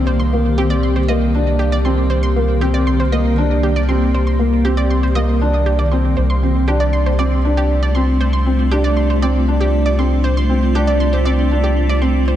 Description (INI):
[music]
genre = piano and strings electronica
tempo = 118 BPM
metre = 4/4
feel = straight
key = C dorian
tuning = A4 = 439 Hz
[part]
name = granular cloud pad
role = sustained chords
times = 0.0-12.4 s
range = Eb3 to G4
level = -22 LUFS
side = equal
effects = built-in reverb
[part]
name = round analog bass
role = bass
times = 0.0-12.4 s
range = C2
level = -16 LUFS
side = equal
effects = none
[part]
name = analog pluck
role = arpeggios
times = 0.1-12.4 s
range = G4 to C6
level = -24 LUFS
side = right 2 dB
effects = chorus, cassette tape, tape echo
[part]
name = felt-muted upright piano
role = riff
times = 0.3-12.2 s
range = Bb3 to D4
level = -19 LUFS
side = equal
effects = analog chorus, tape echo
[sound]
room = moderate plate reverb, RT60 3.8 s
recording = dreamy mix soaked in reverb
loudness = -13 LUFS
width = side -11 dB against mid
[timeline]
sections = 0.0-12.4 A section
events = none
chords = 0.0 Cm7; 6.2 Dm7/C